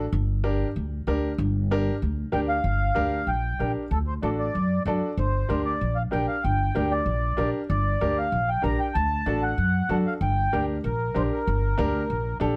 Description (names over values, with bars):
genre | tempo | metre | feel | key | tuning
latin | 190 BPM | 4/4 | straight | G harmonic minor | A4 = 440 Hz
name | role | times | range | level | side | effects
bright upright piano | accompaniment | 0.0-12.6 s | D4 to D5 | -31 LUFS | equal | none
upright bass | bass | 0.0-12.5 s | G1 to F#2 | -28 LUFS | equal | none
mellow accordion | melody | 2.3-12.4 s | A4 to Bb5 | -30 LUFS | equal | none
room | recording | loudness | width
little or no reverb | dark, warm production | -25 LUFS | mono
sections
0.0-2.6 A section; 2.6-12.6 B section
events
upright piano fill 4.7-5.2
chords
0.1 Gm; 3.9 D; 5.2 Gm; 9.0 D; 10.2 Gm